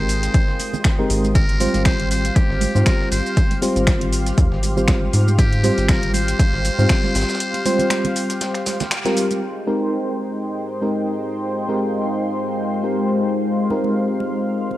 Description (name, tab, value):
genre	deep house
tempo	119 BPM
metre	4/4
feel	swing 55% on 16ths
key	Ab major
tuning	A4 = 441 Hz
part	trumpet with metal mute	melody	0.0-8.9 s	G4 to C5	-27 LUFS	equal	cassette tape, analog delay
part	warm analog pad	sustained chords	0.0-14.8 s	Ab3 to F6	-28 LUFS	equal	chorus, sidechain pumping
part	mellow FM electric piano	stabs	0.0-14.8 s	G3 to C5	-22 LUFS	equal	chorus, tremolo, sidechain pumping, tape echo
part	rubbery square bass	bass	0.0-7.2 s	Ab1 to Ab2	-20 LUFS	equal	sidechain pumping
part	deep dark ambient pad	texture	0.0-14.8 s	Ab3 to G5	-26 LUFS	left 2 dB	chorus, built-in reverb, sidechain pumping
part	breakbeat sampler-style drum kit	drums	0.1-9.3 s	hi-hat, shaker, snare drum	-33 LUFS	equal	none
part	deep house drum kit	drums	0.1-9.5 s	crash cymbal, finger snaps, hi-hat, shaker	-26 LUFS	equal	overdrive, low-pass filter on hats, studio ambience, low-pass filter on perc, low-pass filter on snare, low-pass filter on cymbals
part	electronic kick drum	drums	0.3-7.0 s	none	-17 LUFS	equal	overdrive, studio ambience
part	congas	percussion	0.3-9.4, 13.7-14.8 s	none	-30 LUFS	right 7 dB	none
room	moderate lush hall reverb, RT60 2.1 s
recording	home recording on cassette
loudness	-17 LUFS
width	side -15 dB against mid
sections	0.0-9.4 A section; 9.4-14.8 B section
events	break 7.4-9.4; band accent 8.9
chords	0.0 Abmaj7